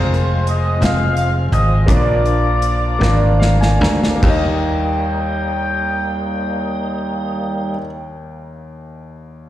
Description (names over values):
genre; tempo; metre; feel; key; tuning
slow gospel; 47-59 BPM (dotted quarters); 6/8; straight; Eb major; A4 = 443 Hz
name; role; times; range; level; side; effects
warm horn section; melody; 0.0-7.8 s; F4 to G5; -22 LUFS; equal; slapback echo, tape echo
clear grand piano; accompaniment; 0.0-9.5 s; Eb2 to Bb5; -23 LUFS; left 2 dB; slapback echo
tonewheel organ; sustained chords; 0.0-7.8 s; F3 to Eb4; -25 LUFS; right 2 dB; slow rotary speaker, overdrive, chorus vibrato
dry thumbed slap bass; bass; 0.0-7.8 s; F1 to Eb2; -17 LUFS; equal; none
modern studio drum kit; drums; 0.1-4.4 s; crash cymbal, hi-hat, kick drum, snare drum; -20 LUFS; equal; none
room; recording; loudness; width
studio ambience; live gig heard through the venue's PA, recital hall reverb; -14 LUFS; side -13 dB against mid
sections
0.0-4.2 A section; 4.2-9.3 B section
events
slowing down 0.0-4.2; drum fill 3.0-4.2; grand piano fill 3.0-4.2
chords
0.0 Fm; 1.9 Bb; 4.2 Eb